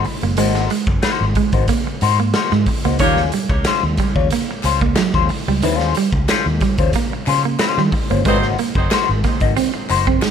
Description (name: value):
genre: funk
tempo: 91 BPM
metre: 4/4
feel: straight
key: Eb mixolydian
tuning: A4 = 440 Hz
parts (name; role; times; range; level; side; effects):
- clean electric guitar; accompaniment; 0.0-10.3 s; G3 to Eb5; -21 LUFS; left 11 dB; wah
- vintage muted fingered electric bass; bass; 0.0-10.3 s; Gb1 to Eb3; -20 LUFS; equal; none
- raw garage drum kit; drums; 0.0-10.3 s; hi-hat, kick drum, snare drum; -20 LUFS; equal; none
- semi-hollow electric guitar; riff; 0.1-10.3 s; Eb3 to C4; -22 LUFS; right 8 dB; spring reverb
- warm horn section; second line; 3.0-3.2, 8.3-8.5 s; Gb3 to Db5; -24 LUFS; right 2 dB; tape echo
- group handclap; percussion; 3.7-10.3 s; none; -30 LUFS; left 5 dB; none
room: light reverb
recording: none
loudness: -15 LUFS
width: side -8 dB against mid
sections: 0.0-10.3 A section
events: none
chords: 0.0 Ab9; 3.0 Eb13; 8.3 Ab9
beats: | 0.38 1.03 1.69 2.35 | 3.00 3.66 4.31 4.97 | 5.62 6.28 6.94 7.59 | 8.25 8.91 9.56 10.22